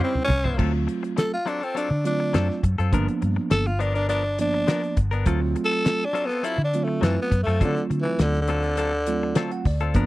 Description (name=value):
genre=straight-eighth soul blues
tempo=102 BPM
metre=4/4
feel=straight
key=unclear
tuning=A4 = 440 Hz
part: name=growling tenor saxophone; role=melody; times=0.0-9.5 s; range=D3 to A4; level=-25 LUFS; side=equal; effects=none
part: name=bell-like tine electric piano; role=accompaniment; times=0.0-10.1 s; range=F3 to A5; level=-27 LUFS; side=right 4 dB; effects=none
part: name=direct-recorded clean electric guitar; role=stabs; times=0.0-10.1 s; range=F3 to B#4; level=-32 LUFS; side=left 6 dB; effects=spring reverb
part: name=damped 70s drum kit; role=drums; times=0.0-10.1 s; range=crash cymbal, hi-hat, kick drum, snare drum, toms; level=-24 LUFS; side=equal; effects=none
part: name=vintage muted fingered electric bass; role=bass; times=0.3-10.1 s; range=G1 to D3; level=-24 LUFS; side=equal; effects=none
room=little or no reverb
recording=dry, close 1970s-style studio recording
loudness=-21 LUFS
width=side -17 dB against mid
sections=0.6-10.1 A section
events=drum fill 0.0-0.6; tenor saxophone solo 0.6-10.1; tine electric piano fill 9.1-10.0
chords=0.0 A7#9 (rootless); 0.6 D7#9; 2.9 G7#9; 5.3 D7#9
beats=| 0.58 1.16 1.75 2.33 | 2.92 3.51 4.09 4.68 | 5.26 5.85 6.44 7.02 | 7.61 8.19 8.78 9.37 | 9.95